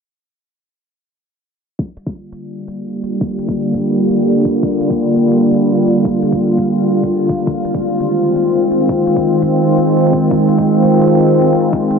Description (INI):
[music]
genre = half-time drum and bass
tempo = 169 BPM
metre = 4/4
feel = swing 55% on 16ths, half-time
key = G phrygian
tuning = A4 = 440 Hz
[part]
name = bowed-like drone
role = sustained chords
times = 2.5-12.0 s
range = D3 to F4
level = -12 LUFS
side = equal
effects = built-in reverb, sidechain pumping
[part]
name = electronic kick drum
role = drums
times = 1.8-11.8 s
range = none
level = -22 LUFS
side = left 1 dB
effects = high-pass filter on kick, high-pass filter on room
[part]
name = electronic hi-hat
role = drums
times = 2.0-12.0 s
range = none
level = -48 LUFS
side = right 2 dB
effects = none
[sound]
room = wet echo chamber reverb, RT60 1.4 s, digital ambience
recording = low-pass filter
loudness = -12 LUFS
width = side -6 dB against mid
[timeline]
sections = 1.8-12.0 A section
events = filter sweep on synth drone 1.8-12.0; filter sweep 1.8-12.0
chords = 1.8 Gm7; 7.5 Fm7